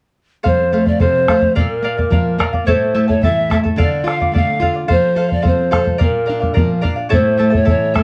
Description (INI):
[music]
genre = andean folk, Andean ensemble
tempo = 108 BPM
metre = 2/4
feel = straight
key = unclear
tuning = A4 = 439 Hz
[part]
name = charango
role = accompaniment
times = 0.4-8.0 s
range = E4 to A5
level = -25 LUFS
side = equal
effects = none
[part]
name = reedy pan flute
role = melody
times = 0.5-8.0 s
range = A4 to F5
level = -19 LUFS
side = equal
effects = none
[part]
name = nylon-string guitar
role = accompaniment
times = 0.5-8.0 s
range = F2 to A4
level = -21 LUFS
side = equal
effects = none
[part]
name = bombo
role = percussion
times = 0.5-8.0 s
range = none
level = -20 LUFS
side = equal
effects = none
[sound]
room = light reverb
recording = dark, warm production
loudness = -15 LUFS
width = mono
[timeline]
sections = 0.4-8.0 A section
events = none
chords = 0.4 F; 1.6 Bb; 2.7 A; 3.8 Dm; 4.9 F; 6.0 Bb; 7.1 A